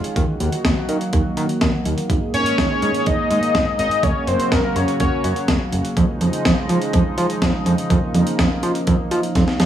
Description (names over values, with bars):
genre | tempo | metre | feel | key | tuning
synth-pop | 124 BPM | 4/4 | straight | unclear | A4 = 442 Hz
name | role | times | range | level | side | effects
chorused pulse-width pad | sustained chords | 0.0-9.7 s | Db3 to Ab4 | -23 LUFS | right 1 dB | none
breakbeat sampler-style drum kit | drums | 0.0-9.7 s | hi-hat, kick drum, snare drum | -21 LUFS | equal | none
fat analog bass | bass | 0.2-9.7 s | Gb1 to F3 | -18 LUFS | right 1 dB | none
fat analog lead | melody | 2.3-5.5 s | Bb4 to Eb5 | -20 LUFS | left 2 dB | chorus, tape echo
room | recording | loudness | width
moderate recital hall reverb, RT60 1.4 s | small room ambience | -16 LUFS | side -10 dB against mid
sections
0.0-9.7 A section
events
drum fill 9.4-9.7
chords
0.2 Ebm; 2.1 Absus2; 4.0 Gb; 6.0 Dbadd9